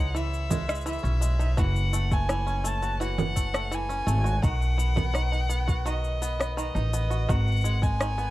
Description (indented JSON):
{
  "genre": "folktronica",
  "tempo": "84 BPM",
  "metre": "4/4",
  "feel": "straight",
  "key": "F# dorian",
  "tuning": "A4 = 440 Hz",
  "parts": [
    { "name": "rich violin", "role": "melody", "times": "0.0-8.3 s", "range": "D#5 to A5", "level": "-32 LUFS", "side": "left 1 dB", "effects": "ping-pong delay" },
    { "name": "bluegrass banjo", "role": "arpeggios", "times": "0.0-8.3 s", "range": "D#3 to F#4", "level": "-34 LUFS", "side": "right 1 dB", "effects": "ping-pong delay" },
    { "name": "upright bass", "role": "bass", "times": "0.0-8.3 s", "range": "F#1 to C#2", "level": "-26 LUFS", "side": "equal", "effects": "none" },
    { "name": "electronic cabasa, congas and rim click", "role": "drums", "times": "0.2-8.3 s", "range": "none", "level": "-32 LUFS", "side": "right 2 dB", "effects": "none" },
    { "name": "electronic kick drum", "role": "drums", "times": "0.5-8.0 s", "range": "none", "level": "-26 LUFS", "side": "equal", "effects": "none" }
  ],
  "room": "little or no reverb",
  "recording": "dark, warm production",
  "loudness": "-24 LUFS",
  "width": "side -16 dB against mid",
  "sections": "0.0-8.3 A section",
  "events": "none",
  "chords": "0.0 C#madd9; 1.6 F#m7; 4.4 B; 7.3 G#m7",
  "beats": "0.15 0.86 | 1.58 2.29 3.00 3.72 | 4.43 5.15 5.86 6.58 | 7.29 8.00"
}